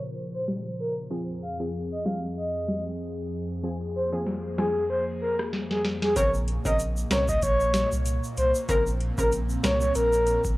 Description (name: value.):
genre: dancehall.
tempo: 95 BPM.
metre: 4/4.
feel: swing 56% on 16ths.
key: Bb minor.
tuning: A4 = 440 Hz.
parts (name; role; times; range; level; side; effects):
airy breathy pad; sustained chords; 0.0-10.6 s; F2 to C5; -34 LUFS; left 1 dB; chorus, sidechain pumping.
breathy flute-like synth lead; melody; 0.3-10.4 s; Ab4 to F5; -26 LUFS; equal; chorus, cassette tape, tape echo.
booming analog drum machine; drums; 0.5-10.6 s; hi-hat, kick drum, rim click, snare drum; -29 LUFS; equal; overdrive, cassette tape.
analog pluck; accompaniment; 1.1-9.9 s; Db3 to Bb4; -33 LUFS; right 1 dB; chorus.
saturated sub bass; bass; 6.2-10.6 s; Bb1 to C2; -28 LUFS; equal; none.
egg shaker; percussion; 6.2-10.6 s; none; -39 LUFS; right 1 dB; none.
room: light reverb, digital ambience.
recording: home recording on cassette, low-pass filter.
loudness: -24 LUFS.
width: side -18 dB against mid.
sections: 0.0-6.2 A section; 6.2-10.6 B section.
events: filter sweep 0.0-6.2; drum fill 5.5-6.2.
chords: 0.0 Bbmadd9; 1.1 Fm; 6.2 Bbmadd9.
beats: 0.48 | 1.11 1.74 2.37 3.00 | 3.64 4.27 4.90 5.53 | 6.16 6.79 7.43 8.06 | 8.69 9.32 9.95.